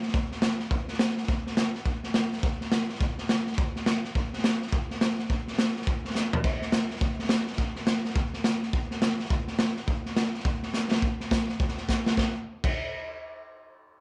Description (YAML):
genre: rock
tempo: 209 BPM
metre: 4/4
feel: swing 62% on 8ths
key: none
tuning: none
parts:
  - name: raw garage drum kit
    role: drums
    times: 0.0-12.7 s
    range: crash cymbal, hi-hat, kick drum, snare drum, toms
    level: -28 LUFS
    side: equal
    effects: none
room: light reverb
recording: none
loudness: -28 LUFS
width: mono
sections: 0.0-11.0 A section; 11.0-12.2 B section; 12.2-14.0 C section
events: drum fill 6.2, 10.7, 11.9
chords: none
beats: 0.14 0.42 | 0.71 1.00 1.28 1.57 | 1.86 2.14 2.43 2.72 | 3.00 3.29 3.58 3.86 | 4.15 4.43 4.72 5.01 | 5.29 5.58 5.87 6.15 | 6.44 6.73 7.01 7.30 | 7.59 7.87 8.16 8.45 | 8.73 9.02 9.30 9.59 | 9.88 10.16 10.45 10.74 | 11.02 11.31 11.60 11.88 | 12.17 12.46